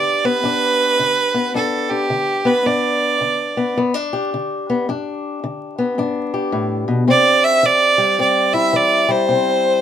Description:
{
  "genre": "acoustic country blues, solo or duo",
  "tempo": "108 BPM",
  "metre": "4/4",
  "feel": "swing 62% on 8ths",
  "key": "G major",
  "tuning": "A4 = 440 Hz",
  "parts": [
    { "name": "clear fiddle", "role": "melody", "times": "0.0-3.8, 7.1-9.8 s", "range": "G4 to E5", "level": "-15 LUFS", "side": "right 3 dB", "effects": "none" },
    { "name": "fingerpicked old ladder-braced acoustic guitar", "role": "accompaniment", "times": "0.0-9.8 s", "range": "G2 to G4", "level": "-19 LUFS", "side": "left 3 dB", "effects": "none" }
  ],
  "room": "light reverb",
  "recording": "minimal, uncompressed stereo recording, vinyl crackle",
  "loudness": "-15 LUFS",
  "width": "side -9 dB against mid",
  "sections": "0.0-9.8 A section",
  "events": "none",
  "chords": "0.0 G; 7.1 C"
}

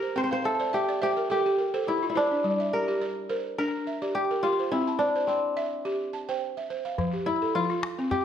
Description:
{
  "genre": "west african traditional, West African string and xylophone music",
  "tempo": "106 BPM",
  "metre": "4/4",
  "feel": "swing 54% on 16ths",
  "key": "unclear",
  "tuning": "A4 = 439 Hz",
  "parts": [
    { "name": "kora", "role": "melody", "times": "0.0-8.2 s", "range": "C4 to C5", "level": "-27 LUFS", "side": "left 1 dB", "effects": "slapback echo" },
    { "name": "balafon", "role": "arpeggios", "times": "0.0-8.1 s", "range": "F3 to A5", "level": "-29 LUFS", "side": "right 2 dB", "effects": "slapback echo" },
    { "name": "calabash", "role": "percussion", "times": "7.0-8.2 s", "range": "none", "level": "-34 LUFS", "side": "left 4 dB", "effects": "none" }
  ],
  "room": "moderate recital hall reverb, RT60 1.6 s",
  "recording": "none",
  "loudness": "-25 LUFS",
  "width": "side -9 dB against mid",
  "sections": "0.0-7.0 A section; 7.0-8.2 B section",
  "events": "balafon fill 0.2-2.4",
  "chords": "0.2 C; 2.4 Gm; 4.7 C; 7.0 F"
}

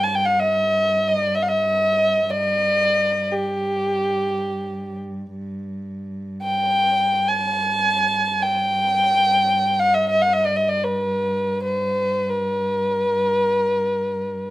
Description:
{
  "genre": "Arabic maqam ensemble",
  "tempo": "free time",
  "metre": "none",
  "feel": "none",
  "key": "G maqam huzam",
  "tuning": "A4 = 440 Hz",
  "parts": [
    { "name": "dark violin", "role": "melody", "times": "0.0-14.5 s", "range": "G4 to A5-45c", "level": "-18 LUFS", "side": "equal", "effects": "slapback echo" },
    { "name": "dark cello", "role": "drone", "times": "0.0-14.5 s", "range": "G2", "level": "-29 LUFS", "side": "right 1 dB", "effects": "none" }
  ],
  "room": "light reverb",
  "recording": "recorded outdoors, with no room sound",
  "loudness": "-18 LUFS",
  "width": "side -15 dB against mid",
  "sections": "0.0-5.4 A section; 5.4-14.5 A section",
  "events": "none",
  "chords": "none"
}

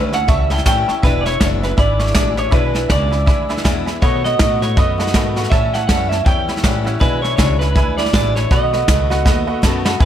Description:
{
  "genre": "rockabilly",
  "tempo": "161 BPM",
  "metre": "4/4",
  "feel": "swing 60% on 8ths",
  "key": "E mixolydian",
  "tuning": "A4 = 439 Hz",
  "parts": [
    { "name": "electric guitar through a small old amp", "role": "melody", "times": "0.0-10.1 s", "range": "B4 to G5", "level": "-20 LUFS", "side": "right 2 dB", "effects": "tape echo" },
    { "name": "honky-tonk upright piano", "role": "accompaniment", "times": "0.0-10.1 s", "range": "B4 to D6", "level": "-26 LUFS", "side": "right 5 dB", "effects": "none" },
    { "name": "picked acoustic archtop guitar", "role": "accompaniment", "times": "0.0-10.1 s", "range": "E2 to F#4", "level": "-23 LUFS", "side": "left 6 dB", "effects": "none" },
    { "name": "upright bass", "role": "bass", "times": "0.0-10.1 s", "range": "E1 to B2", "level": "-20 LUFS", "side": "equal", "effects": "none" },
    { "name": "soft brush drum kit", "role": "drums", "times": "0.1-10.1 s", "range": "hi-hat, kick drum, snare drum", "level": "-17 LUFS", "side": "equal", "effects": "none" }
  ],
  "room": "light reverb, small room reverb",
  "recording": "none",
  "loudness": "-13 LUFS",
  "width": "side -10 dB against mid",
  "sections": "0.0-10.0 A section",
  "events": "drum fill 9.3-10.0",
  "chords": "0.0 A7; 1.0 E7; 4.0 B7; 5.5 A7; 7.0 E7; 8.5 B7"
}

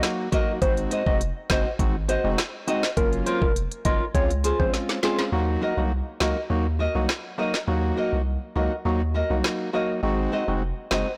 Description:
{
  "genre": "dancehall",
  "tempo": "102 BPM",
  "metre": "4/4",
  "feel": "straight",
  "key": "Eb dorian",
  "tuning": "A4 = 440 Hz",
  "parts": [
    { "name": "percussive organ stab", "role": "accompaniment", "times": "0.0-11.1 s", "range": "Gb3 to Gb4", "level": "-30 LUFS", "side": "equal", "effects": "chorus, sidechain pumping" },
    { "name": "island pop drum kit", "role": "drums", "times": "0.0-11.1 s", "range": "hi-hat, kick drum, rim click, snare drum", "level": "-28 LUFS", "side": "equal", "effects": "none" },
    { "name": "nylon-string guitar", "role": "arpeggios", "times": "0.3-11.1 s", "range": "F4 to Eb5", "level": "-31 LUFS", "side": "equal", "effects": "none" },
    { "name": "soft struck synth lead", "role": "melody", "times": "0.6-4.7 s", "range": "Bb4 to Eb5", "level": "-31 LUFS", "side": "equal", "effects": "chorus, delay" },
    { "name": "punchy sub bass", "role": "bass", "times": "0.6-11.0 s", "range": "F1 to Eb2", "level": "-29 LUFS", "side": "equal", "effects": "none" }
  ],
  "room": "light reverb",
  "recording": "blown-out, overdriven recording, overdrive",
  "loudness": "-24 LUFS",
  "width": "mono",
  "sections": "0.0-5.3 A section; 5.3-11.2 B section",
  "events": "drum fill 4.7-5.3; kick muted 5.3-11.2",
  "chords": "0.0 Ebm; 0.6 Ab7; 3.0 Gbmaj7; 4.1 Dbmaj7; 5.3 Ebm; 10.0 Ab7"
}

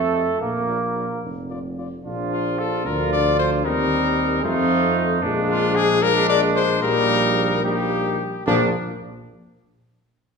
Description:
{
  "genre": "classical, brass quintet",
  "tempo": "74 BPM (dotted quarters)",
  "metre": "6/8",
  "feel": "straight",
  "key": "Bb major",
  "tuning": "A4 = 440 Hz",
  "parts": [
    { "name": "warm trumpet", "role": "second line", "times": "0.0-8.7 s", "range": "D4 to Bb4", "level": "-26 LUFS", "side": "right 5 dB", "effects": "none" },
    { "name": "clear trombone", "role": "accompaniment", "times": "0.0-8.7 s", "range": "F3 to Bb3", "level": "-25 LUFS", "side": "right 1 dB", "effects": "none" },
    { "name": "mellow tuba", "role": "bass", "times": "0.0-8.7 s", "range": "F1 to F2", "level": "-25 LUFS", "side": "right 2 dB", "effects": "none" },
    { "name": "warm cornet", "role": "melody", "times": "0.1-8.7 s", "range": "D4 to Eb5", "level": "-23 LUFS", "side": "left 7 dB", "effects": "none" },
    { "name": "warm French horn", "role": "accompaniment", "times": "0.1-8.7 s", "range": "Bb3 to G4", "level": "-28 LUFS", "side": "left 4 dB", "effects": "none" }
  ],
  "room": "wet recital hall reverb, RT60 1.3 s",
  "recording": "recorded in a church or concert hall",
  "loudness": "-18 LUFS",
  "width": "side -5 dB against mid",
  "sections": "0.0-2.1 A section; 2.1-8.5 B section; 8.5-10.1 C section",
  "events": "none",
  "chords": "0.4 Bb; 2.9 Dm; 3.7 Cm7/Eb; 4.4 F7; 5.2 Bb7; 6.8 Eb/Bb; 8.5 Bb"
}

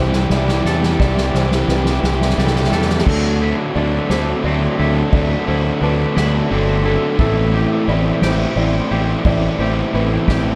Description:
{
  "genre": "post-rock",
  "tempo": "58 BPM (dotted quarters)",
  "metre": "6/8",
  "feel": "straight",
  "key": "unclear",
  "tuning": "A4 = 439 Hz",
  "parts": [
    { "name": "felt-muted upright piano", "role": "arpeggios", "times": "0.0-10.6 s", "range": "A4 to D5", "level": "-29 LUFS", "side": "equal", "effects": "tape echo" },
    { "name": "twangy electric guitar", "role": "arpeggios", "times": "0.0-10.6 s", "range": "A2 to A4", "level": "-29 LUFS", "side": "equal", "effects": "subtle chorus, tape echo" },
    { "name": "fuzz guitar", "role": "riff", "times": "0.0-10.6 s", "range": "A2 to E4", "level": "-25 LUFS", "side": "equal", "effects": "distortion" },
    { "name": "overdriven semi-hollow guitar", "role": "riff", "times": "0.0-10.6 s", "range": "A2 to A4", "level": "-24 LUFS", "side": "equal", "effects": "none" },
    { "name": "fuzz fingered electric bass", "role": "bass", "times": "0.0-10.5 s", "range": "G1 to E2", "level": "-21 LUFS", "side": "equal", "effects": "overdrive" },
    { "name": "soft-mallet drum kit", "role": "drums", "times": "0.1-10.4 s", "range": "crash cymbal, kick drum, ride cymbal, snare drum", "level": "-24 LUFS", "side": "equal", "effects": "none" }
  ],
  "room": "light reverb, studio ambience",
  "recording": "dark, warm production",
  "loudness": "-17 LUFS",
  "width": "mono",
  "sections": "0.0-3.1 A section; 3.1-10.6 B section",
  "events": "build-up 0.0-3.1; drum fill 0.0-3.1",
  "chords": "0.0 C6; 3.1 D9; 7.2 Am7"
}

